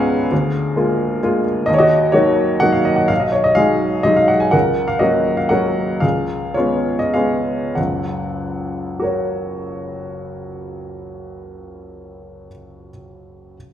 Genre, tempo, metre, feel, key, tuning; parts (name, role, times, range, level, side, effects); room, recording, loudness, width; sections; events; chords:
classical, piano waltz; 93-136 BPM; 3/4; rubato; F# major; A4 = 442 Hz
clear upright piano; solo; 0.0-13.6 s; F#1 to B5; -16 LUFS; equal
wet recital hall reverb, RT60 1.4 s; recorded in a church or concert hall; -15 LUFS; side -10 dB against mid
0.0-7.8 A section; 7.8-11.4 B section
slowing down 3.8-7.8
0.3 A#7/D; 1.7 D#m7; 3.1 G#m7/B; 4.5 F#/C#; 6.0 C#7; 7.8 F#